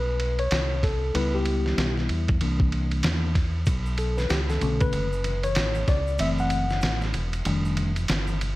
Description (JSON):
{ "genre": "hip hop, jazz-hop", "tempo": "95 BPM", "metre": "4/4", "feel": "swing 62% on 16ths", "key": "unclear", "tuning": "A4 = 436 Hz", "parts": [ { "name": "mellow tine electric piano", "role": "accompaniment", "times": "0.0-7.9 s", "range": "D3 to F#5", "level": "-28 LUFS", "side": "left 2 dB", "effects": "medium stereo tremolo" }, { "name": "deep dub fingered electric bass", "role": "bass", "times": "0.0-8.6 s", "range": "E1 to E2", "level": "-26 LUFS", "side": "equal", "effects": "none" }, { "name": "dusty soul sampler-style drum kit", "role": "drums", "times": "0.2-8.6 s", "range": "hi-hat, kick drum, ride cymbal, snare drum", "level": "-27 LUFS", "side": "equal", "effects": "vintage 12-bit sampler grit" }, { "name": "tube shaker and congas", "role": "percussion", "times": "3.7-8.6 s", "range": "none", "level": "-39 LUFS", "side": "right 1 dB", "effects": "none" } ], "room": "little or no reverb", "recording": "vinyl crackle", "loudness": "-22 LUFS", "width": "side -18 dB against mid", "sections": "0.0-8.6 A section", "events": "tine electric piano solo 0.0-8.6; kick muted 6.2-8.6", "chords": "0.0 E5 (rootless); 1.1 C#m7b5; 2.4 C9; 3.7 Bm7; 6.2 F#m7b5; 7.5 F13", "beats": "0.51 | 1.14 1.77 2.41 3.04 | 3.67 4.30 4.93 5.56 | 6.20 6.83 7.46 8.09" }